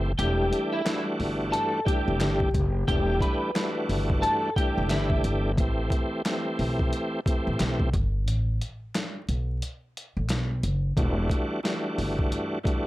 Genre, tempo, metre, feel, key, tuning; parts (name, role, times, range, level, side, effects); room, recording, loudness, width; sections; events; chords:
hip hop, boom-bap hip-hop; 89 BPM; 4/4; swing 62% on 16ths; E minor; A4 = 440 Hz
bright tonewheel organ; accompaniment; 0.0-12.9 s; E3 to G4; -28 LUFS; equal; overdrive, chorus vibrato, stopped rotary speaker, cassette tape, high-pass filter, low-pass filter
upright bass; bass; 0.0-12.3 s; E1 to B1; -27 LUFS; equal; tube saturation
electric guitar at the edge of break-up; melody; 0.2-5.2 s; E4 to B5; -29 LUFS; left 1 dB; ensemble chorus, high-pass filter, low-pass filter, tape echo
boom bap sampler-style drum kit; drums; 0.2-12.9 s; hi-hat, kick drum, snare drum; -28 LUFS; equal
finger snaps; percussion; 0.9-10.5 s; -41 LUFS; left 3 dB
little or no reverb; dry, gritty hardware recording, vinyl crackle; -24 LUFS; side -17 dB against mid
0.0-11.0 A section; 11.0-12.9 B section
break 0.0, 8.3-11.0; kick muted 0.2-1.5
0.2 Em11; 5.6 Am7; 11.0 Em11